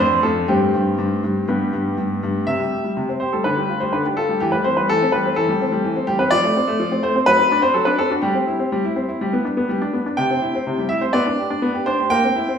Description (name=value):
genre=classical-period piano sonatina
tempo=124 BPM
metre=4/4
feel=straight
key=C major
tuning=A4 = 440 Hz
part: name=bright grand piano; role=solo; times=0.0-12.6 s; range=F2 to G5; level=-17 LUFS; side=equal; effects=none
room=wet recital hall reverb, RT60 1.3 s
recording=recorded in a church or concert hall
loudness=-17 LUFS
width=side -7 dB against mid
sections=0.0-2.5 A section; 2.5-12.6 B section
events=none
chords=0.5 C5/G; 1.5 G; 2.5 C; 3.4 G5/D; 4.4 C/E; 6.3 F; 7.3 D7/F#; 8.2 C/G; 9.2 G; 10.2 C; 11.2 G/B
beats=0.00 | 0.49 0.99 1.49 1.99 | 2.48 2.97 3.45 3.93 | 4.41 4.89 5.37 5.84 | 6.32 6.79 7.27 7.75 | 8.23 8.72 9.21 9.70 | 10.18 10.67 11.15 11.63 | 12.12